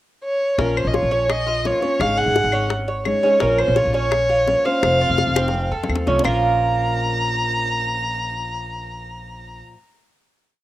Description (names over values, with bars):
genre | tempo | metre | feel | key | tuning
latin, Cuban son and guajira | 169 BPM | 4/4 | straight | Bb minor | A4 = 440 Hz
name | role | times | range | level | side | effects
warm violin | melody | 0.2-9.6 s | Bb4 to Bb5 | -21 LUFS | equal | none
nylon-string guitar | accompaniment | 0.6-9.8 s | Bb2 to Ab4 | -28 LUFS | left 2 dB | cassette tape
Cuban tres | arpeggios | 0.6-9.6 s | Bb3 to Db5 | -22 LUFS | right 3 dB | cassette tape
upright bass | bass | 0.6-9.6 s | F1 to F2 | -24 LUFS | equal | none
bongos | percussion | 0.6-6.3 s | none | -26 LUFS | left 6 dB | none
claves | percussion | 0.8-6.3 s | none | -30 LUFS | left 7 dB | none
room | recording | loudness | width
moderate spring reverb, RT60 1.2 s | home recording on cassette | -17 LUFS | side -14 dB against mid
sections
0.0-0.6 pickup bar; 0.6-6.2 verse; 6.2-9.1 final chord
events
drum fill 5.4-6.2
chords
0.0 N.C.; 0.6 Bbm; 2.0 Absus4; 3.4 Bbm; 4.8 F; 6.2 Bbm